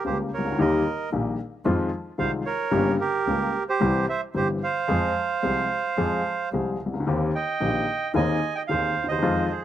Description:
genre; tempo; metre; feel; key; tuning
tango; 111 BPM; 4/4; rubato; F minor; A4 = 440 Hz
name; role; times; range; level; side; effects
bandoneon; melody; 0.0-9.6 s; G4 to Ab5; -25 LUFS; right 5 dB; none
warm upright piano; accompaniment; 0.0-9.5 s; G1 to Ab4; -25 LUFS; left 3 dB; none
clear double bass; bass; 0.0-9.5 s; G1 to F2; -31 LUFS; right 2 dB; none
room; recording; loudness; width
little or no reverb; recorded outdoors, with no room sound; -22 LUFS; side -11 dB against mid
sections
0.0-9.6 A section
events
none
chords
0.0 Gdim; 0.6 Eb; 1.7 Fm7; 2.7 Gdim; 3.8 C; 4.9 Fm; 7.1 Eb6; 8.2 Abadd9/Eb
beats
0.05 | 0.59 1.13 1.67 2.20 | 2.73 3.27 3.81 4.35 | 4.89 5.43 5.97 6.52 | 7.07 7.62 8.15 8.70 | 9.24

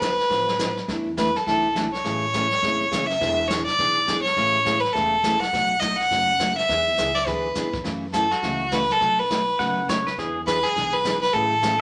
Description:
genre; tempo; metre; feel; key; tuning
country, western swing; 207 BPM; 4/4; swing 62% on 8ths; unclear; A4 = 438 Hz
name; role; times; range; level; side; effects
clear fiddle; melody; 0.0-11.8 s; F#4 to F#5; -23 LUFS; equal; none
picked steel-string acoustic guitar; accompaniment; 0.0-11.7 s; B2 to A4; -31 LUFS; equal; none
upright bass; bass; 0.0-11.8 s; E1 to F#2; -38 LUFS; equal; none
jazz brush drum kit; drums; 0.0-11.8 s; brushed snare drum, hi-hat, kick drum, snare drum; -34 LUFS; equal; none
pedal steel guitar; second line; 9.6-10.4 s; G#4 to F#5; -28 LUFS; equal; none
room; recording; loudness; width
moderate studio reverb, RT60 0.6 s; none; -22 LUFS; mono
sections
0.0-11.8 A section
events
none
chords
0.0 Dm6; 0.9 E7sus4; 2.0 Amaj7; 3.2 E7; 4.4 Amaj7; 5.5 B7; 6.7 E7; 7.8 F#m7; 9.0 B7; 10.2 E7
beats
0.01 0.30 0.59 | 0.88 1.17 1.46 1.75 | 2.04 2.33 2.62 2.92 | 3.21 3.50 3.79 4.08 | 4.37 4.66 4.95 5.24 | 5.53 5.82 6.11 6.40 | 6.69 6.98 7.27 7.56 | 7.85 8.14 8.43 8.72 | 9.01 9.30 9.59 9.88 | 10.17 10.46 10.75 11.04 | 11.33 11.62

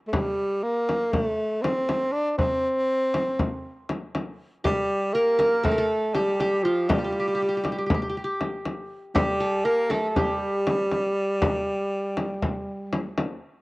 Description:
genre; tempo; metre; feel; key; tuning
Turkish makam ensemble; 239 BPM (eighths); 9/8; straight; G makam ussak; A4 = 442 Hz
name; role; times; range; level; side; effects
breathy tenor saxophone; melody; 0.1-13.2 s; F3 to D4; -24 LUFS; equal; none
frame drum; percussion; 0.1-13.3 s; none; -26 LUFS; left 1 dB; none
qanun; second line; 4.6-13.1 s; F4 to Bb4; -28 LUFS; equal; cassette tape
room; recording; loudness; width
light reverb; home recording on cassette; -23 LUFS; side -22 dB against mid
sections
0.0-13.6 A section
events
none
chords
none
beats
| 0.14 0.39 0.64 0.89 1.14 1.39 1.64 1.89 2.14 | 2.39 2.64 2.89 3.14 3.39 3.64 3.90 4.14 4.40 | 4.65 4.90 5.15 5.40 5.65 5.90 6.15 6.40 6.65 | 6.90 7.15 7.40 7.65 7.91 8.15 8.41 8.66 8.91 | 9.16 9.41 9.66 9.91 10.16 10.41 10.67 10.92 11.17 | 11.42 11.67 11.92 12.17 12.42 12.68 12.93 13.18

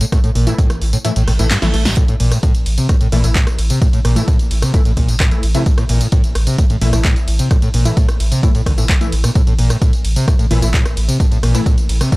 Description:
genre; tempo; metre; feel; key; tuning
driving peak-time techno; 130 BPM; 4/4; straight; A phrygian; A4 = 441 Hz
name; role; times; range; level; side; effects
screaming distorted acid line; riff; 0.0-12.2 s; A1 to A3; -18 LUFS; equal; distortion, lush chorus, sidechain pumping
punchy analog drum machine; drums; 0.0-12.2 s; handclaps, hi-hat, ride cymbal, rim click, snare drum, tambourine; -23 LUFS; equal; overdrive, sidechain pumping on hats, sidechain pumping on perc, sidechain pumping on cymbals
electronic kick drum; drums; 0.1-12.2 s; none; -14 LUFS; equal; overdrive
saturated sub bass; bass; 0.2-12.0 s; A1; -18 LUFS; equal; tube saturation, sidechain pumping, low-pass filter
rave stab; stabs; 0.5-12.2 s; E3 to E4; -24 LUFS; left 1 dB; chorus, built-in reverb, sidechain pumping, tape echo
reverse cymbal; sound effects; 1.2-2.0 s; none; -27 LUFS; right 4 dB; none
room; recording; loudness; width
digital ambience; dry, gritty hardware recording; -12 LUFS; side -21 dB against mid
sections
0.0-12.2 A section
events
kick drops out 1.0-2.0; reverse cymbal 1.2-2.0; drum fill 1.5-2.0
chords
0.0 A5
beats
| 0.12 0.58 1.05 1.51 | 1.97 2.43 2.89 3.35 | 3.82 4.28 4.74 5.20 | 5.66 6.12 6.58 7.05 | 7.51 7.97 8.43 8.89 | 9.36 9.82 10.28 10.74 | 11.20 11.66 12.12

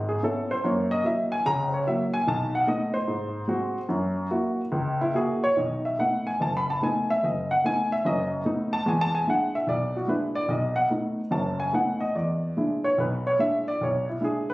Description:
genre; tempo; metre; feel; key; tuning
solo jazz; 146 BPM; 4/4; swing 67% on 8ths, rubato; B mixolydian; A4 = 442 Hz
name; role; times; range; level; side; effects
dark baby grand piano; solo; 0.0-14.5 s; F#1 to B5; -23 LUFS; equal; none
room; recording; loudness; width
moderate club reverb, RT60 0.6 s; recorded on a phone in the room, club reverb, nothing above 10.5 kHz; -23 LUFS; side -18 dB against mid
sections
0.0-5.6 A section; 5.6-14.5 A section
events
grand piano solo 0.0-14.5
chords
0.0 C#m7; 0.6 F#7; 2.3 B7; 3.1 G#7; 3.9 F#7; 5.6 B7; 8.9 E7; 10.5 B7; 12.2 E7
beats
0.23 | 0.65 1.06 1.47 1.87 | 2.28 2.68 3.09 3.50 | 3.90 4.32 4.73 5.16 | 5.58 5.99 6.41 6.83 | 7.24 7.65 8.06 8.46 | 8.87 9.27 9.68 10.09 | 10.49 10.90 11.32 11.74 | 12.16 12.57 12.98 13.40 | 13.81 14.21

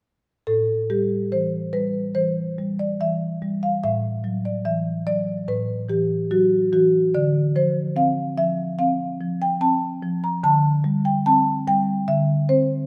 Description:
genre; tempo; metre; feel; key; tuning
classical, contemporary piece for solo marimba; 72 BPM; 4/4; rubato; A minor; A4 = 443 Hz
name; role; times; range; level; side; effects
marimba with soft mallets; solo; 0.5-12.9 s; A2 to Bb5; -22 LUFS; equal; none
room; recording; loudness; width
moderate recital hall reverb, RT60 1.5 s; none; -22 LUFS; mono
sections
0.5-12.9 A section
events
none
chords
0.5 A5; 3.8 Esus2/A; 7.2 Dm7; 10.4 D9sus4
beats
| 0.47 1.32 2.16 3.00 | 3.82 4.65 5.48 6.32 | 7.15 7.98 8.80 9.62 | 10.44 11.26 12.08

